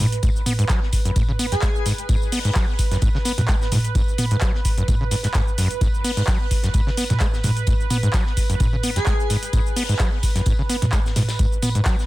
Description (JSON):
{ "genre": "acid house", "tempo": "129 BPM", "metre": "4/4", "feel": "swing 54% on 16ths", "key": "G# minor", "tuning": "A4 = 439 Hz", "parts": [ { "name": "warm analog pad", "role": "sustained chords", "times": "0.0-12.1 s", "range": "B4", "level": "-31 LUFS", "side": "right 5 dB", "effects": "chorus, tremolo, sidechain pumping" }, { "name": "overdriven acid bass", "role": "riff", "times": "0.0-12.0 s", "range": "F#2 to B3", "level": "-24 LUFS", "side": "equal", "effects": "distortion, tube saturation, cassette tape, sidechain pumping, ping-pong delay" }, { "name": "booming analog drum machine", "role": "drums", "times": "0.0-12.1 s", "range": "handclaps, hi-hat, shaker, toms", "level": "-25 LUFS", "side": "right 1 dB", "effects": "none" }, { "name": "damped 70s drum kit", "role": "drums", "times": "0.0-12.1 s", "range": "hi-hat, snare drum, tambourine", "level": "-36 LUFS", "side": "left 4 dB", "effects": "high-pass filter on hats, high-pass filter on snare, high-pass filter on perc, high-pass filter on room" }, { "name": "electronic kick drum", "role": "drums", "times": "0.2-12.0 s", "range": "none", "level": "-21 LUFS", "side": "equal", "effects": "none" }, { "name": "airy dreamy lead", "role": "melody", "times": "1.5-1.9, 9.0-9.3 s", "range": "G#4", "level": "-30 LUFS", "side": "left 1 dB", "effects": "chorus, ping-pong delay" } ], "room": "little or no reverb", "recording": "dense, heavily limited modern master", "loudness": "-18 LUFS", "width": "side -17 dB against mid", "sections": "0.0-12.1 A section", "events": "none", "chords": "0.0 G#m", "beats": "| 0.23 0.69 1.16 1.62 | 2.09 2.56 3.02 3.49 | 3.95 4.42 4.88 5.35 | 5.81 6.28 6.74 7.21 | 7.67 8.14 8.60 9.07 | 9.53 10.00 10.46 10.93 | 11.39 11.86" }